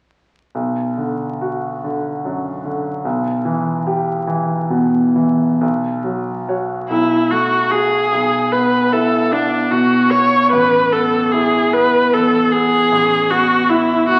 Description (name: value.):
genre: classical, impressionist duo for viola and grand piano.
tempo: 42-52 BPM (dotted quarters).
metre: 6/8.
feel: rubato.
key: B dorian.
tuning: A4 = 440 Hz.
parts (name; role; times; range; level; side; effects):
clear grand piano; accompaniment; 0.5-14.2 s; A1 to C#5; -20 LUFS; equal; none.
rich viola; melody; 6.9-14.2 s; D4 to C#5; -16 LUFS; equal; none.
room: wet recital hall reverb, RT60 1.3 s.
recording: very old 78 rpm record, vinyl crackle.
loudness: -17 LUFS.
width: mono.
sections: 0.5-5.6 A section; 5.6-14.2 B section.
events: none.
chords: 0.5 Bm; 3.0 G6/B; 5.6 Bsus2; 6.9 F#madd9/B; 8.1 E5/B; 10.5 Asus2.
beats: | 0.54 1.82 | 3.04 4.28 | 5.61 6.90 | 8.12 9.31 | 10.51 11.73 | 12.92 14.09.